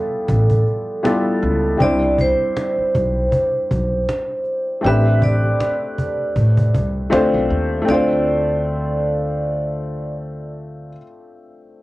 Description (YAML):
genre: lo-fi hip hop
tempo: 79 BPM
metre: 4/4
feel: swing 57% on 16ths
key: D dorian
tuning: A4 = 440 Hz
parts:
  - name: vibraphone with medium hard mallets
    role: melody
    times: 0.0-10.1 s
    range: A4 to E5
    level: -22 LUFS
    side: right 1 dB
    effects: cassette tape, plate reverb
  - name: felt-muted upright piano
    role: accompaniment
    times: 0.0-11.8 s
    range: G3 to C5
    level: -21 LUFS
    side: left 1 dB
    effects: cassette tape, plate reverb
  - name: upright bass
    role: bass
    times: 0.3-11.0 s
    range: A1 to A2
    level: -20 LUFS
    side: equal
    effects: none
  - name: cajon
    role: drums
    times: 0.3-8.1 s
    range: none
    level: -25 LUFS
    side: equal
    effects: cassette tape
room: moderate studio reverb, RT60 0.5 s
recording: home recording on cassette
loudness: -16 LUFS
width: side -18 dB against mid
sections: 0.0-7.9 A section; 7.9-10.9 B section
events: none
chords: 0.0 G13; 1.8 Cmaj9; 4.8 Am11; 7.1 Dm7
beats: 0.28 1.04 | 1.80 2.56 3.32 4.08 | 4.84 5.60 6.36 7.12 | 7.88 8.64 9.40 10.16